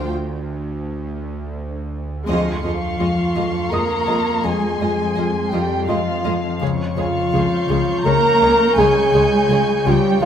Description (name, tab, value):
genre	cinematic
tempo	83 BPM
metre	3/4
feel	straight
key	F minor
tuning	A4 = 440 Hz
part	rich chamber violin section	melody	0.0-10.3 s	Db5 to G5	-33 LUFS	left 1 dB	none
part	dark chamber violin section	second line	0.0-10.3 s	F5 to Bb5	-22 LUFS	equal	none
part	warm chamber viola section	accompaniment	0.0-10.3 s	F3 to Ab4	-26 LUFS	right 3 dB	none
part	concert harp	riff	0.0-10.3 s	F2 to D4	-24 LUFS	left 7 dB	none
part	rich chamber double bass section	bass	0.0-10.3 s	Db2 to F2	-28 LUFS	right 3 dB	none
part	warm chamber cello section	bass	0.0-10.3 s	F3 to Bb3	-24 LUFS	right 3 dB	none
part	bowed-like drone	drone	0.0-10.3 s	Db2 to F2	-29 LUFS	right 2 dB	built-in reverb
part	dark baby grand piano	texture	0.0-10.3 s	Ab4 to Eb6	-26 LUFS	left 1 dB	none
part	rich symphonic violin section	texture	2.3-10.3 s	C6 to G6	-32 LUFS	right 1 dB	none
part	mellow clarinet	second line	2.6-10.3 s	F4 to Bb4	-20 LUFS	equal	none
room	moderate scoring stage reverb, RT60 1.6 s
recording	none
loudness	-16 LUFS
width	side -8 dB against mid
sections	0.0-2.3 A section; 2.3-10.3 B section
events	break 0.1-2.3; band accent 2.3-3.0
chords	0.0 N.C.; 2.3 Fm7; 6.6 Db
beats	| 0.10 0.83 1.55 | 2.27 3.00 3.72 | 4.44 5.17 5.89 | 6.61 7.33 8.06 | 8.78 9.50 10.22